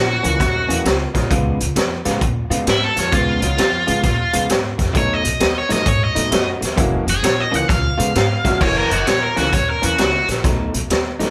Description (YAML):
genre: electric blues shuffle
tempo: 131 BPM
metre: 4/4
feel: swing 65% on 8ths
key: unclear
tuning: A4 = 440 Hz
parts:
  - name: overdriven electric guitar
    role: melody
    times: 0.0-10.3 s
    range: E4 to F#5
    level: -22 LUFS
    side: equal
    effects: slapback echo
  - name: upright bass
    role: bass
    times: 0.0-11.3 s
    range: F#1 to B2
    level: -26 LUFS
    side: equal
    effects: none
  - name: electric guitar through a small old amp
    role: riff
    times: 0.2-11.3 s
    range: F#2 to E#4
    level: -26 LUFS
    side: equal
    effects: spring reverb
  - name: raw garage drum kit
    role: drums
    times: 0.2-11.3 s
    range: crash cymbal, hi-hat, kick drum, snare drum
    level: -21 LUFS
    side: equal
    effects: none
  - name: bright upright piano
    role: accompaniment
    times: 0.4-3.6, 6.3-10.3 s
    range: G#3 to F#4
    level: -28 LUFS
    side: equal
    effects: none
room: light reverb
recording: band playing live in one room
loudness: -18 LUFS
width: mono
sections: 0.0-8.6 A section; 8.6-11.3 B section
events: overdriven electric guitar solo 0.0-8.6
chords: 0.0 F#7; 1.3 C#7; 5.0 B7; 6.8 F#7; 7.7 C#7; 8.6 F#7; 10.4 B7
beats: 0.40 0.86 | 1.31 1.76 2.22 2.67 | 3.13 3.58 4.04 4.50 | 4.95 5.41 5.87 6.32 | 6.78 7.24 7.69 8.15 | 8.61 9.06 9.52 9.98 | 10.44 10.90